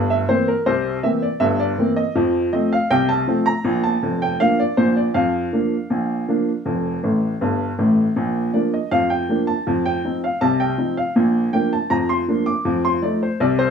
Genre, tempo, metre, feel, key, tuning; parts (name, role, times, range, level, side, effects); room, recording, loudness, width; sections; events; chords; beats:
ragtime piano; 80 BPM; 2/4; straight; Bb major; A4 = 440 Hz
clear upright piano; solo; 0.0-13.7 s; F1 to D6; -17 LUFS; equal
moderate studio reverb, RT60 0.7 s; -17 LUFS; side -6 dB against mid
0.0-13.7 A section
upright piano fill 7.0-8.2
0.0 C7; 2.2 F; 3.6 Bb; 5.2 Bb/F; 6.7 F; 8.2 Bb; 9.7 F5; 11.2 Bb; 12.7 F7
| 0.66 1.41 | 2.16 2.90 | 3.65 4.40 | 5.15 5.91 | 6.66 7.42 | 8.17 8.92 | 9.67 10.41 | 11.16 11.90 | 12.65 13.40